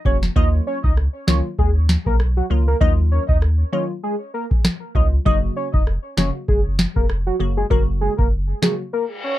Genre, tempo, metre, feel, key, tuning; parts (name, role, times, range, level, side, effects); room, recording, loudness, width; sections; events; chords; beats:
dancehall; 98 BPM; 4/4; swing 56% on 16ths; Eb minor; A4 = 440 Hz
warm velvety synth lead; melody; 0.1-9.4 s; Gb4 to Eb5; -24 LUFS; equal; chorus, tremolo, digital delay
glassy wavetable pluck; accompaniment; 0.1-8.8 s; Db3 to Gb4; -26 LUFS; equal; chorus
warm sub bass; bass; 0.1-8.5 s; F1 to Eb2; -19 LUFS; equal
booming analog drum machine; drums; 0.1-8.8 s; kick drum, rim click, snare drum; -18 LUFS; equal
reverse cymbal; sound effects; 9.1-9.4 s; -28 LUFS; left 4 dB
little or no reverb; dark, warm production; -17 LUFS; side -14 dB against mid
0.0-9.4 A section
break 8.9-9.4; reverse cymbal 9.1
0.4 Ebmadd9; 5.3 Gb
| 0.36 0.97 1.58 2.20 | 2.81 3.42 4.03 4.65 | 5.26 5.87 6.48 7.09 | 7.71 8.32 8.93